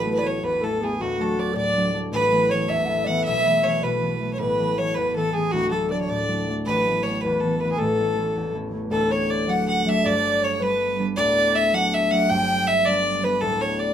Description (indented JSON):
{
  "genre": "celtic folk, Celtic jig",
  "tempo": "106 BPM (dotted quarters)",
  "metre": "6/8",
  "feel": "straight",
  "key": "A major, D major from 8.9 s",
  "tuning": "A4 = 437 Hz",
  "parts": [
    { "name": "bright fiddle", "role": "melody", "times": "0.0-13.9 s", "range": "F#4 to G5", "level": "-25 LUFS", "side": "right 2 dB", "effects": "none" },
    { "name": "concert harp", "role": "accompaniment", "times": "0.0-13.9 s", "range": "D1 to F#4", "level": "-25 LUFS", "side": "equal", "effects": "none" },
    { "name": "reedy baroque flute", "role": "second line", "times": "0.1-13.9 s", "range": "F#4 to G5", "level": "-24 LUFS", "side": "left 2 dB", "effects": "none" }
  ],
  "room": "wet studio ambience, RT60 0.5 s",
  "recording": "minimal, uncompressed stereo recording",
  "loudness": "-20 LUFS",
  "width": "side -9 dB against mid",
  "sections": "0.0-8.9 A section; 8.9-13.9 B section",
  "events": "none",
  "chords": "0.0 Asus2; 1.0 D; 2.1 Asus2; 3.3 Esus4/B; 4.4 Asus2; 5.5 D; 6.7 Asus2; 7.8 A; 8.9 D; 10.0 G; 11.2 D; 12.3 G; 13.4 D5"
}